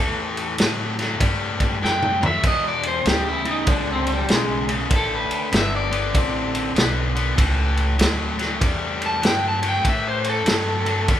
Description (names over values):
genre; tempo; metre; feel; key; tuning
electric blues shuffle; 97 BPM; 4/4; swing 64% on 8ths; A mixolydian; A4 = 440 Hz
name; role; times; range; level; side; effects
electric guitar at the edge of break-up; melody; 0.0-11.2 s; G3 to A5; -24 LUFS; left 1 dB; spring reverb
cranked stack guitar; riff; 0.0-11.2 s; E2 to C4; -25 LUFS; left 2 dB; overdrive
upright bass; bass; 0.0-11.2 s; G1 to A2; -26 LUFS; equal; none
warm soul drum kit; drums; 0.4-11.2 s; kick drum, ride cymbal, snare drum, toms; -22 LUFS; equal; none
room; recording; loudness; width
light reverb; band playing live in one room; -18 LUFS; side -10 dB against mid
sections
0.0-11.2 A section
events
clean electric guitar solo 0.0-11.2; drum fill 1.8-2.4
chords
0.0 A7(no3); 2.4 E5; 4.9 D5; 7.4 A7